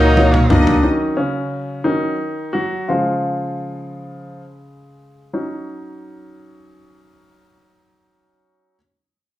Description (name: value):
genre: six-eight pop ballad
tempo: 43-60 BPM (dotted quarters)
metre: 6/8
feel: straight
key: Eb minor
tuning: A4 = 443 Hz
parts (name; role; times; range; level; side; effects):
- edgy tenor saxophone; melody; 0.0-0.6 s; Eb4; -21 LUFS; right 2 dB; none
- warm studio violin section; second line; 0.0-0.8 s; Db5 to Eb5; -24 LUFS; left 2 dB; none
- clear baby grand piano; accompaniment; 0.0-8.8 s; Bb2 to Gb4; -18 LUFS; left 1 dB; none
- warm studio string section; sustained chords; 0.0-0.8 s; Bb4 to Eb6; -28 LUFS; equal; none
- direct-recorded clean electric guitar; arpeggios; 0.0-1.4 s; Gb3 to Gb4; -30 LUFS; right 3 dB; none
- vintage muted fingered electric bass; bass; 0.0-0.8 s; Db2; -16 LUFS; equal; none
- toms; drums; 0.2-0.8 s; none; -20 LUFS; equal; none
room: wet large studio reverb, RT60 0.8 s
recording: band playing live in one room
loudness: -16 LUFS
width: side -14 dB against mid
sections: 0.8-5.3 A section; 5.3-9.4 B section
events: drum fill 0.0-0.8; slowing down 0.8-5.3; grand piano solo 0.8-5.3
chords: 0.0 Ebm; 0.8 Ebm7; 2.9 Db; 5.3 Ebm7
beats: | 0.83 1.84 | 2.90 4.04 | 5.34 6.72 | 8.09